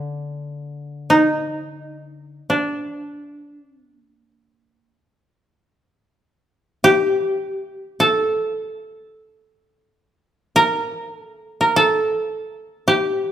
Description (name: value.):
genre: japanese traditional, Japanese chamber music.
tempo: free time.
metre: none.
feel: none.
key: D miyako bushi.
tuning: A4 = 437 Hz.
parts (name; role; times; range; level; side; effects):
koto; melody; 0.0-13.3 s; D4 to Bb4; -17 LUFS; equal; none.
koto; accompaniment; 0.0-2.4 s; D3; -33 LUFS; left 3 dB; none.
room: moderate recital hall reverb, RT60 1.6 s.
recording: none.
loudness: -17 LUFS.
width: side -10 dB against mid.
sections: 0.0-13.3 A section.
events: none.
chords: none.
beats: free time.